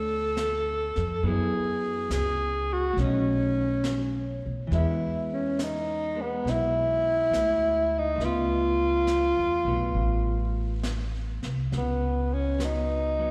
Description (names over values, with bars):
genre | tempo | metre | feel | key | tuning
jazz ballad | 69 BPM | 4/4 | swing 69% on 8ths | unclear | A4 = 437 Hz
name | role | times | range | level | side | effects
breathy tenor saxophone | melody | 0.0-13.3 s | B3 to A4 | -29 LUFS | equal | slapback echo
vintage hollow-body jazz guitar | accompaniment | 0.0-13.3 s | E3 to C#5 | -37 LUFS | equal | slapback echo
upright bass | bass | 0.0-13.3 s | A1 to B2 | -32 LUFS | equal | none
jazz brush drum kit | drums | 0.4-13.3 s | brushed snare drum, hi-hat, snare drum | -42 LUFS | equal | none
room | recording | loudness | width
light reverb, small room ambience | live gig heard through the venue's PA, recital hall reverb | -27 LUFS | mono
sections
0.0-11.7 A section; 11.7-13.3 B section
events
none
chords
0.0 Bm9; 1.2 F#9sus4; 3.0 B9; 4.7 E; 8.2 C#7b13; 11.7 C#9sus4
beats
0.36 | 1.23 2.10 2.97 3.84 | 4.71 5.58 6.45 7.32 | 8.19 9.07 9.95 10.83 | 11.72 12.61